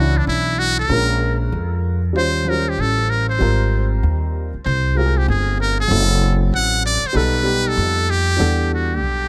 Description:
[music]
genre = hip hop, jazz-hop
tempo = 96 BPM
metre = 4/4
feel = swing 63% on 16ths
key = unclear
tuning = A4 = 440 Hz
[part]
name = trumpet with metal mute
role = melody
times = 0.0-9.3 s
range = D4 to F#5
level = -23 LUFS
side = equal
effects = analog delay
[part]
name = dark concert grand piano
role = accompaniment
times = 0.0-9.3 s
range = E3 to F#5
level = -26 LUFS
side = equal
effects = none
[part]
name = upright bass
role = bass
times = 0.0-9.3 s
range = F#1 to E#2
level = -21 LUFS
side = equal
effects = none
[sound]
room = little or no reverb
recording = none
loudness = -18 LUFS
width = mono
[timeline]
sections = 0.0-9.3 A section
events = muted trumpet solo 0.0-9.3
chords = 0.0 Dmaj9; 0.9 A#m7; 2.2 D#13; 3.4 G#maj13; 5.9 F#m7b5; 7.2 Baug7; 8.4 Em11

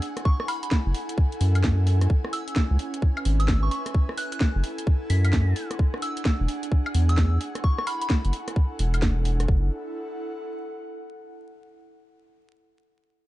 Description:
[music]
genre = UK garage, two-step garage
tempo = 130 BPM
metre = 4/4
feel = swing 64% on 16ths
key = F# minor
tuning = A4 = 440 Hz
[part]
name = soft string machine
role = sustained chords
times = 0.0-9.5 s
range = G#5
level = -44 LUFS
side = equal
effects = ensemble chorus, sidechain pumping
[part]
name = garage drum kit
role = drums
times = 0.0-9.5 s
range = hi-hat, rim click, snare drum, woodblock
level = -30 LUFS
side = equal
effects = none
[part]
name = airy breathy pad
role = texture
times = 0.0-11.3 s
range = C#4 to F#5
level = -35 LUFS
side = right 1 dB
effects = chorus, sidechain pumping
[part]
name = soft synth bell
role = melody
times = 0.3-8.1 s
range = B5 to B6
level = -33 LUFS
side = equal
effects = chorus, tape echo
[part]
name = electronic kick drum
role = drums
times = 0.3-9.6 s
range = none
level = -22 LUFS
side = equal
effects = none
[part]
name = saturated sub bass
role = bass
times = 0.9-9.7 s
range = E1 to F#2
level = -21 LUFS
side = equal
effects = tube saturation
[sound]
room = little or no reverb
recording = dark, warm production, vinyl crackle, nothing above 10.7 kHz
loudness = -22 LUFS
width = side -16 dB against mid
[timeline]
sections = 0.0-9.5 A section; 9.5-11.3 B section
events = drop 0.0-9.5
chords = 0.0 F#m7; 2.1 C#m7; 3.7 F#m7; 5.6 E9; 7.4 F#m7; 8.6 E9sus4; 9.5 F#m7

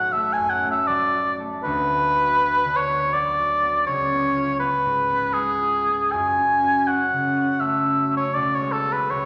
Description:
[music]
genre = classical, romantic duo for oboe and harp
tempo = 80 BPM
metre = 3/4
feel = rubato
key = unclear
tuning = A4 = 440 Hz
[part]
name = clear oboe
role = melody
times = 0.0-9.3 s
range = G#4 to G#5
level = -22 LUFS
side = equal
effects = none
[part]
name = concert harp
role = accompaniment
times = 0.0-9.3 s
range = B1 to G#4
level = -30 LUFS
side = equal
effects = none
[sound]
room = wet recital hall reverb, RT60 1.6 s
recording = vinyl crackle, faint mains hum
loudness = -21 LUFS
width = mono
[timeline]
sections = 0.0-9.3 A section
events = none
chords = 0.0 B5; 1.6 Bm/D; 3.9 C#7; 6.1 F#m; 8.3 Bm13

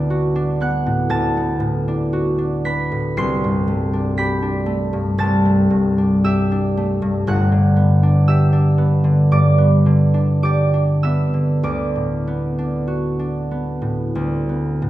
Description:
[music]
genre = classical, solo harp piece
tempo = 46-61 BPM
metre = 4/4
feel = rubato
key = D mixolydian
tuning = A4 = 441 Hz
[part]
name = concert harp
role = solo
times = 0.0-14.9 s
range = G1 to C7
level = -16 LUFS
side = equal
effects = none
[sound]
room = wet recital hall reverb, RT60 1.8 s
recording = recorded in a church or concert hall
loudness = -16 LUFS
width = side -15 dB against mid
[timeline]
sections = 0.0-14.9 A section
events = none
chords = 0.0 D6; 3.2 C69; 7.3 Gmaj7; 11.7 D6

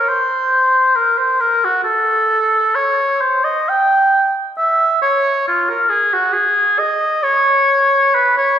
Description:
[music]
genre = classical, baroque-style fantasia for unaccompanied oboe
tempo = 67 BPM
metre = 4/4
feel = rubato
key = unclear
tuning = A4 = 438 Hz
[part]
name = warm oboe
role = solo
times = 0.0-8.6 s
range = F4 to G5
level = -12 LUFS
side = equal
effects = none
[sound]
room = wet recital hall reverb, RT60 1.7 s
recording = recorded in a church or concert hall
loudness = -12 LUFS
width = side -9 dB against mid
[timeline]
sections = 0.0-8.6 A section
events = none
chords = none

